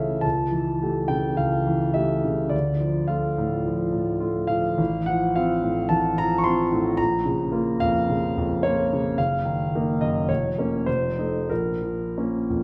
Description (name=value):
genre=classical, romantic character piece for solo piano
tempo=88-112 BPM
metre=4/4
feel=rubato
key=D minor, Bb minor from 4.8 s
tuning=A4 = 435 Hz
part: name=clear concert grand piano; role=solo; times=0.0-12.6 s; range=F1 to Db6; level=-24 LUFS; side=equal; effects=none
room=wet recital hall reverb, RT60 1.4 s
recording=none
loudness=-24 LUFS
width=mono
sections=0.0-12.6 A section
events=none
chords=0.2 A7/C#; 2.5 Dm; 4.8 F/A; 7.0 Bbm; 9.2 Ebm/Gb; 10.3 Bbm/F; 10.9 F7; 11.5 Bbm